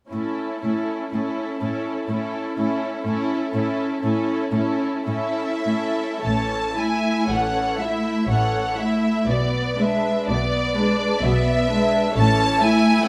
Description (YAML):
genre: classical, slow romantic movement for string orchestra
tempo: 48-66 BPM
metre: 3/4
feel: rubato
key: A major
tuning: A4 = 440 Hz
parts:
  - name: warm studio violin section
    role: melody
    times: 0.1-13.1 s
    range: A4 to A5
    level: -28 LUFS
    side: equal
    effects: none
  - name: warm studio violin section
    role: second line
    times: 0.1-13.1 s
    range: B3 to E5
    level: -28 LUFS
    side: equal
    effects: none
  - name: rich studio viola section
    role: accompaniment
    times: 0.1-13.1 s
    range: E3 to E4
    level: -27 LUFS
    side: equal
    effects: none
  - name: rich studio cello section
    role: bass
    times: 0.1-13.0 s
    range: A2 to B2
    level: -29 LUFS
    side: equal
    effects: none
  - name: rich studio double bass section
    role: bass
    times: 6.2-13.0 s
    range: A1 to B1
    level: -28 LUFS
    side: equal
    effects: none
room: wet stone room reverb, RT60 1.1 s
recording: none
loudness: -22 LUFS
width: mono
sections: 0.1-6.2 A section; 6.2-13.1 B section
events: none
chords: 0.1 A; 9.3 G#dim/B; 12.2 A